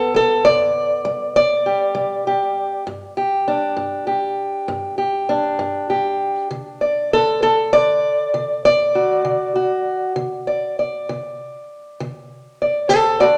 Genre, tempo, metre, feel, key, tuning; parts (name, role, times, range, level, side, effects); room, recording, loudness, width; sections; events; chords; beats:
acoustic country blues, solo or duo; 66 BPM (dotted quarters); 12/8; straight; D major; A4 = 441 Hz
fingerpicked acoustic archtop guitar; solo; 0.0-13.4 s; G2 to D5; -19 LUFS; equal
moderate large studio reverb, RT60 1.1 s; -19 LUFS; mono
0.0-13.4 A section
steel-string acoustic guitar solo 0.0-13.4
0.0 G; 6.5 D
0.15 1.05 1.96 | 2.87 3.78 4.69 5.60 | 6.51 7.42 8.34 9.25 | 10.16 11.07 11.99 12.90